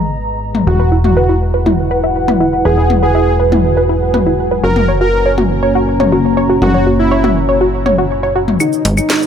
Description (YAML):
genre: melodic techno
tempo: 121 BPM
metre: 4/4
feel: straight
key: unclear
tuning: A4 = 439 Hz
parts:
  - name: dark analog pad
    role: sustained chords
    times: 0.0-9.3 s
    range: G#3 to D#5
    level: -20 LUFS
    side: left 1 dB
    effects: chorus, phaser, vintage 12-bit sampler grit
  - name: plucky analog bass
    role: bass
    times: 0.0-9.0 s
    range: E1 to G#1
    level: -16 LUFS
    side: equal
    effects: none
  - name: warbly tape-like pad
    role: texture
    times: 0.0-9.3 s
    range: E4 to A#5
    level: -19 LUFS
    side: right 2 dB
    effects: chorus, built-in reverb
  - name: house drum kit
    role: drums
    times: 0.5-9.3 s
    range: claves, hi-hat, shaker, snare drum, toms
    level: -17 LUFS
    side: left 3 dB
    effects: none
  - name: soft supersaw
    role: melody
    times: 0.7-9.3 s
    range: D#4 to A#4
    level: -18 LUFS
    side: equal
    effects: low-pass filter, tape echo
  - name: tight sequenced synth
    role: arpeggios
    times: 0.8-9.3 s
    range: E4 to D#5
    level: -16 LUFS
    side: equal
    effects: chorus, digital delay
  - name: riser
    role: sound effects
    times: 9.3 s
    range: none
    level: barely audible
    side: none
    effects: none
room: light reverb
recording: none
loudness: -10 LUFS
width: side -8 dB against mid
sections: 0.0-8.6 A section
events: filter sweep on drum 0.0-8.6; filter sweep on analog synth pad 0.0-8.6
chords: 0.0 G#m; 0.7 Eadd9; 4.6 F#; 8.6 G#m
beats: 0.17 | 0.67 1.17 1.66 2.16 | 2.65 3.15 3.64 4.14 | 4.64 5.13 5.63 6.12 | 6.62 7.12 7.61 8.11 | 8.60 9.10